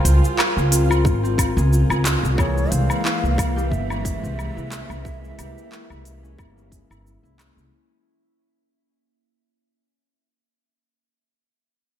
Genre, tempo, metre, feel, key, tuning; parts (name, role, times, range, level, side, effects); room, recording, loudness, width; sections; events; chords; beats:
organic downtempo; 90 BPM; 4/4; swing 55% on 16ths; C phrygian dominant; A4 = 440 Hz
bell-like tine electric piano; accompaniment; 0.0-7.7 s; E3 to C5; -30 LUFS; left 3 dB; fast stereo tremolo, sidechain pumping, ping-pong delay
warm symphonic string section; sustained chords; 0.0-7.7 s; E3 to F4; -30 LUFS; equal; sidechain pumping
concert harp; arpeggios; 0.0-10.3 s; Bb3 to F5; -30 LUFS; equal; ping-pong delay
upright bass; bass; 0.0-7.7 s; G1 to Db2; -20 LUFS; equal; tube saturation, sidechain pumping
organic electronic drum kit; drums; 0.1-7.7 s; handclaps, hi-hat, shaker, woodblock; -25 LUFS; equal
electronic kick drum; drums; 1.0-6.9 s; -23 LUFS; equal
bansuri; melody; 2.4-7.0 s; Db5 to F5; -33 LUFS; left 2 dB; tape echo
moderate lush hall reverb, RT60 2.3 s; dreamy mix soaked in reverb; -17 LUFS; side -10 dB against mid
0.0-7.7 A section
fade-out 0.0-7.7
0.0 Dbmaj7; 2.4 C7b9b13
0.39 1.05 1.72 | 2.38 3.05 3.72 4.38 | 5.05 5.72 6.38 7.05